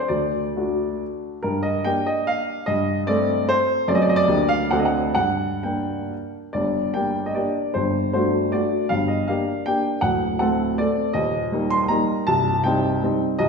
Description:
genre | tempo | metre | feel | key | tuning
classical, romantic triple-time dance for piano with dotted rhythms | 120-171 BPM | 3/4 | rubato | G minor | A4 = 440 Hz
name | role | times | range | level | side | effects
warm baby grand piano | solo | 0.0-13.5 s | C1 to C6 | -20 LUFS | equal | none
room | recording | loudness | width
wet recital hall reverb, RT60 1.4 s | recorded in a church or concert hall | -19 LUFS | side -5 dB against mid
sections
0.0-6.5 A section; 6.5-13.5 B section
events
none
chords
0.1 D; 1.4 Gm; 2.7 Am7b5/G; 3.9 D7b9/F#; 4.3 Gm/D; 4.7 D7; 5.2 Gm; 7.7 D7/G; 8.9 Gm; 10.0 D7; 11.1 Eb; 12.3 Cm

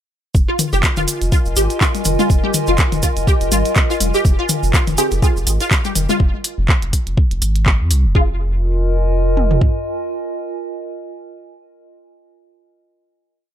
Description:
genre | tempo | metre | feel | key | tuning
minimal techno | 123 BPM | 4/4 | swing 56% on 16ths | F minor | A4 = 440 Hz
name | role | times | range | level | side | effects
round analog bass | bass | 0.3-9.6 s | F1 to F2 | -18 LUFS | equal | sidechain pumping
minimal click drum kit | drums | 0.3-9.7 s | kick drum, toms | -15 LUFS | equal | none
tube shaker | percussion | 0.3-6.2 s | none | -26 LUFS | right 4 dB | none
warbly tape-like pad | texture | 0.3-11.6 s | F4 to Ab5 | -24 LUFS | equal | chorus, built-in reverb, sidechain pumping
resonant blip pluck | riff | 0.5-8.4 s | F4 to G4 | -22 LUFS | right 1 dB | ensemble chorus, sidechain pumping, tape echo
minimal click drum kit | drums | 0.6-8.0 s | handclaps, hi-hat | -20 LUFS | equal | none
electronic toms | percussion | 0.6-6.2 s | none | -23 LUFS | left 8 dB | digital delay
filtered dub chord stab | stabs | 5.0-5.1, 8.2-11.4 s | C4 to Ab4 | -23 LUFS | right 2 dB | phaser, wide subtle chorus, digital delay
room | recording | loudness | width
little or no reverb | none | -14 LUFS | side -10 dB against mid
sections
0.3-8.2 drop; 8.2-12.1 final chord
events
drop 0.3-8.2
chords
0.3 Fm

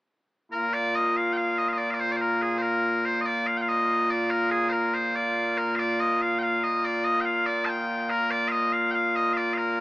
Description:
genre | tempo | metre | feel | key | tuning
scottish traditional | 95 BPM (dotted quarters) | 6/8 | straight | Bb major | A4 = 440 Hz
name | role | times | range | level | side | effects
loud bright bagpipes | melody | 0.5-9.8 s | Bb2 to A5 | -23 LUFS | equal | none
room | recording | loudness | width
moderate huge ambient reverb, RT60 8.4 s | AM radio sound | -23 LUFS | side -20 dB against mid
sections
0.7-9.8 A section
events
none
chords
none

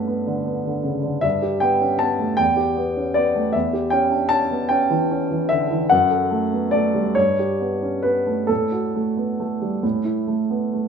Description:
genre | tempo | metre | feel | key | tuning
classical, romantic nocturne for solo piano | 43-53 BPM (dotted quarters) | 6/8 | rubato | unclear | A4 = 439 Hz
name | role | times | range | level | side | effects
warm grand piano | solo | 0.0-10.9 s | E2 to A5 | -18 LUFS | equal | none
room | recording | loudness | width
wet stone room reverb, RT60 1.1 s | none | -18 LUFS | side -6 dB against mid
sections
0.0-10.9 A section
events
none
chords
0.0 Gmaj7; 1.2 G; 2.4 Em; 5.9 F#madd11; 7.2 A9/G; 8.5 Gmaj9/A; 9.8 A5

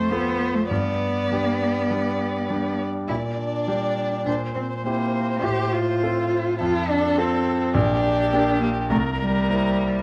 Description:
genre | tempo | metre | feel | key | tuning
quick classical-period movement for piano trio | 102 BPM | 4/4 | straight | F major from 3.1 s | A4 = 441 Hz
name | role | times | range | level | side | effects
warm violin | melody | 0.0-10.0 s | G4 to D5 | -31 LUFS | equal | none
warm cello | second line | 0.0-10.0 s | G3 to G4 | -26 LUFS | equal | none
clear grand piano | accompaniment | 0.0-10.0 s | Bb1 to A4 | -28 LUFS | equal | none
room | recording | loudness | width
moderate recital hall reverb, RT60 1.5 s | close, detailed microphones, vinyl crackle | -23 LUFS | mono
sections
0.0-10.0 A section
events
none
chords
0.0 F; 0.7 G; 3.1 Gm/Bb; 4.3 C7/Bb; 5.4 F/A; 6.6 F; 7.8 Gm/Bb; 8.9 C7

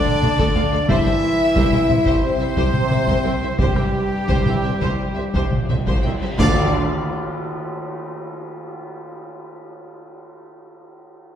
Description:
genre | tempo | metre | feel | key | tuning
cinematic, epic orchestral film score | 85-90 BPM | 4/4 | straight | unclear | A4 = 440 Hz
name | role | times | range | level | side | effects
rich symphonic violin section | melody | 0.0-6.8 s | A4 to G5 | -32 LUFS | left 3 dB | none
bright symphonic violin section | second line | 0.0-6.8 s | G4 to E5 | -32 LUFS | left 2 dB | none
mellow flute section | second line | 0.0-6.8 s | G4 to E5 | -28 LUFS | right 1 dB | none
warm symphonic viola section | accompaniment | 0.0-6.8 s | G4 to F5 | -31 LUFS | equal | none
dark trombone section | sustained chords | 0.0-6.7 s | G2 to E3 | -28 LUFS | right 1 dB | none
mellow French horn section | sustained chords | 0.0-6.7 s | G3 to E4 | -23 LUFS | left 2 dB | none
clear trumpet | stabs | 0.0-6.7 s | G4 to E5 | -27 LUFS | equal | none
taiko ensemble | drums | 0.1-7.8 s | none | -22 LUFS | equal | none
rich symphonic cello section | bass | 0.2-6.8 s | C2 to D2 | -26 LUFS | right 2 dB | none
rich symphonic double bass section | bass | 0.2-6.8 s | C2 to D2 | -26 LUFS | right 1 dB | none
cymbal swell and tam-tam | percussion | 3.6-9.1 s | none | -29 LUFS | equal | none
room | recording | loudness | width
wet scoring stage reverb, RT60 1.8 s | heard from further back in the room | -17 LUFS | side -9 dB against mid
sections
0.0-6.4 A section; 6.4-9.2 B section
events
band accent 6.4-7.1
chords
0.0 D5; 0.9 C; 6.4 D5

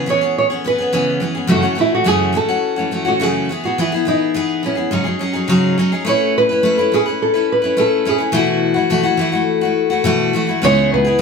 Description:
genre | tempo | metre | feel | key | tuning
acoustic pop | 105 BPM | 4/4 | straight | unclear | A4 = 440 Hz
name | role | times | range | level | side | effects
nylon-string guitar | melody | 0.0-11.2 s | C#4 to C#5 | -17 LUFS | right 1 dB | none
picked steel-string acoustic guitar | accompaniment | 0.0-11.2 s | F#2 to B4 | -16 LUFS | left 2 dB | none
rich cello | bass | 10.6-11.2 s | C#2 | -18 LUFS | left 1 dB | none
room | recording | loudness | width
moderate studio reverb, RT60 0.5 s | band playing live in one room | -14 LUFS | side -5 dB against mid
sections
0.0-6.1 A section; 6.1-11.2 B section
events
none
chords
0.0 C#m7; 1.5 F#m7; 3.5 E; 4.9 G#7sus4; 6.1 Aadd9; 8.4 B7sus4; 10.6 C#m7

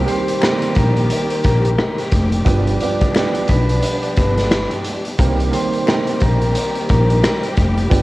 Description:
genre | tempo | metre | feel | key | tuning
hip hop, boom-bap hip-hop | 88 BPM | 4/4 | swing 61% on 16ths | C minor | A4 = 442 Hz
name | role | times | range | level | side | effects
dark upright piano | accompaniment | 0.0-8.0 s | Eb3 to G4 | -23 LUFS | right 5 dB | cassette tape, high-pass filter, low-pass filter
dark studio string section | sustained chords | 0.0-8.0 s | Eb3 to G4 | -25 LUFS | left 1 dB | high-pass filter, low-pass filter, cassette tape
upright bass | bass | 0.0-8.0 s | F1 to C2 | -18 LUFS | equal | none
vibraphone with medium hard mallets | melody | 0.1-7.4 s | Bb4 to D6 | -23 LUFS | left 2 dB | high-pass filter, low-pass filter, cassette tape
raw garage drum kit | drums | 0.1-8.0 s | hi-hat, kick drum, rim click, snare drum | -18 LUFS | equal | cassette tape
finger snaps | percussion | 0.4-7.4 s | none | -29 LUFS | left 7 dB | none
room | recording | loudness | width
studio reverb | home recording on cassette | -14 LUFS | side -18 dB against mid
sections
0.0-8.0 A section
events
none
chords
0.0 Cm7; 2.5 G7; 5.2 Cm7

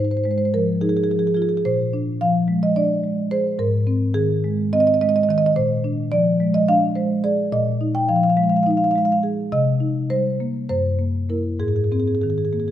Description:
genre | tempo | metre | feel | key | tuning
classical, contemporary piece for solo marimba | 191-222 BPM (eighths) | 7/8 | rubato | Ab major | A4 = 440 Hz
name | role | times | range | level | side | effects
marimba with soft mallets | solo | 0.0-12.7 s | Gb2 to G5 | -18 LUFS | equal | none
room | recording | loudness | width
wet recital hall reverb, RT60 1.7 s | none | -18 LUFS | side -11 dB against mid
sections
0.0-12.7 A section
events
none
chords
0.0 Ab69; 1.7 Bb9; 3.6 Abadd9; 5.6 Bb9; 7.5 Fm7/Bb; 9.5 Cm7; 10.7 Gb7; 11.6 Abadd9

